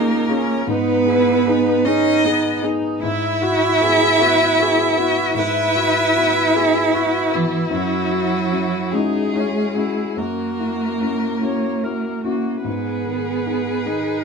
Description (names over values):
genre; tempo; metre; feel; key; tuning
neoclassical piano and strings; 50 BPM (dotted quarters); 6/8; uneven beats, rubato; G# minor; A4 = 440 Hz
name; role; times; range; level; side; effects
rich violin; melody; 0.0-14.2 s; E4 to E5; -22 LUFS; left 5 dB; none
rich cello; second line; 0.0-14.2 s; E3 to E4; -19 LUFS; right 4 dB; none
rich viola; accompaniment; 0.0-14.2 s; B3 to C#5; -26 LUFS; equal; none
warm grand piano; accompaniment; 0.0-14.2 s; C#2 to G#4; -24 LUFS; left 6 dB; none
room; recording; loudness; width
light reverb; minimal, uncompressed stereo recording; -16 LUFS; side -5 dB against mid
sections
0.0-12.7 A section; 12.7-14.2 B section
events
none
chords
0.0 C#; 0.7 G#m; 3.0 Eadd9/G#; 7.7 F#7; 12.7 G#m